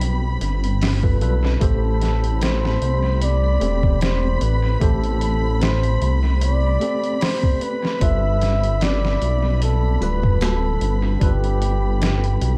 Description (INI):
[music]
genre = trip hop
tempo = 75 BPM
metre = 4/4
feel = swing 55% on 16ths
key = A minor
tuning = A4 = 440 Hz
[part]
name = tine electric piano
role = accompaniment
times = 0.0-12.6 s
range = G3 to C5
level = -30 LUFS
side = equal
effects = overdrive, tremolo, tape echo
[part]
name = rich studio violin section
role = sustained chords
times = 0.0-12.6 s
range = B5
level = -36 LUFS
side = equal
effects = none
[part]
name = dark detuned saw bass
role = bass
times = 0.0-12.6 s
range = D1 to C2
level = -22 LUFS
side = equal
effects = none
[part]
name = trip hop sampler-style drum kit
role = drums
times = 0.0-12.6 s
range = hi-hat, kick drum, snare drum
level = -25 LUFS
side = equal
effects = overdrive, analog delay
[part]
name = flickering grainy texture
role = texture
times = 0.0-12.6 s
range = C4 to B5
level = -36 LUFS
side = equal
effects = none
[part]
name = trumpet with bucket mute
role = melody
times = 1.6-12.6 s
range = G4 to E5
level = -28 LUFS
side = equal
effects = analog delay
[sound]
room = little or no reverb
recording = echo-heavy mix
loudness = -20 LUFS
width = mono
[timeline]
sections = 0.0-12.6 A section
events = none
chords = 0.0 G9; 1.6 Am9; 8.0 G9